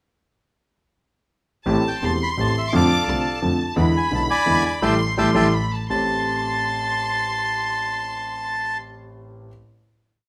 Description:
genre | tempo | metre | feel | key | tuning
tango | 170 BPM | 3/4 | rubato | A minor | A4 = 440 Hz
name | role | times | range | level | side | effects
clear chamber violin section | second line | 1.7-8.8 s | A5 to D6 | -30 LUFS | equal | none
warm concert grand piano | accompaniment | 1.7-9.5 s | E1 to G4 | -26 LUFS | equal | none
clear double bass | bass | 1.7-6.1 s | E1 to F2 | -28 LUFS | equal | none
bandoneon | melody | 1.9-8.8 s | A4 to B5 | -25 LUFS | equal | none
room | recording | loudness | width
moderate large studio reverb, RT60 1.1 s | none | -21 LUFS | mono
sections
1.7-5.9 A section; 5.9-8.0 final chord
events
band accent 4.8-5.9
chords
1.7 Am7; 2.7 F6; 3.8 E7; 4.8 Am7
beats
| 1.67 2.02 2.38 | 2.73 3.08 3.43 | 3.78 4.13 4.48 | 4.84 5.19 5.55 | 5.91 6.27 6.62 | 6.97 7.32 7.67

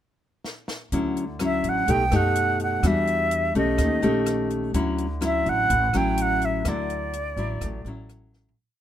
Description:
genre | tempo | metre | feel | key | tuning
bossa nova | 126 BPM | 4/4 | straight | D major | A4 = 440 Hz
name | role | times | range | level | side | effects
compact cocktail drum kit | drums | 0.4-8.6 s | hi-hat, kick drum, rim click, snare drum, toms | -31 LUFS | equal | none
nylon-string guitar | accompaniment | 0.9-8.6 s | A2 to G4 | -25 LUFS | left 2 dB | none
upright bass | bass | 0.9-8.5 s | A1 to F#2 | -28 LUFS | equal | none
silver concert flute | melody | 1.4-8.1 s | D5 to G5 | -24 LUFS | right 2 dB | none
room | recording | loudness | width
little or no reverb | minimal, uncompressed stereo recording | -21 LUFS | side -10 dB against mid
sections
0.0-0.9 pickup bar; 0.9-8.6 A section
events
drum fill 0.4-0.9, 8.3; fade-out 6.7-8.6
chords
0.0 N.C.; 0.9 Dmaj9; 1.9 B7b13; 2.8 Em9; 3.8 Eb7#11; 4.7 Dmaj9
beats
0.45 | 0.93 1.40 1.88 2.36 | 2.83 3.31 3.79 4.27 | 4.75 5.22 5.70 6.18 | 6.66 7.13 7.61 8.09

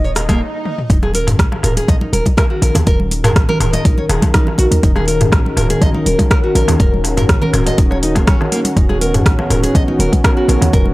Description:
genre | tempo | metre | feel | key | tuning
afro house | 122 BPM | 4/4 | straight | Eb minor | A4 = 439 Hz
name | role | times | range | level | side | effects
warm analog pad | sustained chords | 0.0-10.9 s | Eb3 to Bb4 | -20 LUFS | left 1 dB | chorus, sidechain pumping
nylon-string guitar | arpeggios | 0.0-10.8 s | Bb3 to Eb5 | -21 LUFS | right 1 dB | sidechain pumping, tape echo
warm 808-style bass | bass | 0.0-10.9 s | Eb1 to Eb2 | -18 LUFS | equal | sidechain pumping
swell | sound effects | 0.1-0.9 s | none | -28 LUFS | right 3 dB | none
deep house drum kit | drums | 0.2-10.8 s | hi-hat, rim click, toms | -20 LUFS | equal | none
darbuka | percussion | 0.2-10.7 s | none | -22 LUFS | left 1 dB | none
electronic kick drum | drums | 0.3-10.8 s | none | -13 LUFS | equal | none
congas | percussion | 0.3-10.9 s | none | -22 LUFS | right 1 dB | none
room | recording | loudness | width
light reverb, studio reverb | dry, gritty hardware recording | -11 LUFS | side -19 dB against mid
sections
0.9-10.9 A section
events
swell 0.1-0.9; stop 0.4-0.9; drum fill 0.7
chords
0.0 Db9sus4/Eb; 0.9 Ebm7; 8.8 Db9sus4/Eb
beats
0.41 | 0.90 1.39 1.88 2.37 | 2.87 3.36 3.85 4.34 | 4.83 5.33 5.82 6.31 | 6.80 7.29 7.78 8.28 | 8.77 9.26 9.75 10.24 | 10.73

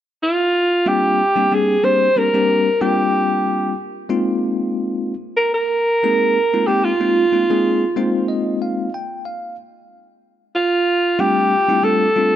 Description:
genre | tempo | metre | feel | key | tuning
jazz | 93 BPM | 4/4 | swing 54% on 16ths | C minor | A4 = 440 Hz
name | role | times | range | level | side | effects
breathy alto saxophone | melody | 0.2-12.4 s | F4 to C5 | -16 LUFS | right 1 dB | none
bell-like tine electric piano | accompaniment | 0.9-12.4 s | G3 to G5 | -20 LUFS | left 2 dB | medium stereo tremolo
room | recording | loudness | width
moderate plate reverb, RT60 2.7 s | none | -15 LUFS | side -11 dB against mid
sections
0.0-12.4 A section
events
tine electric piano fill 7.6-9.6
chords
0.0 C9sus4; 4.1 Bb9sus4; 9.6 G9sus4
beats
0.55 1.20 | 1.84 2.49 3.13 3.77 | 4.42 5.06 5.71 6.35 | 7.00 7.64 8.29 8.93 | 9.57 10.22 10.86 11.51 | 12.15

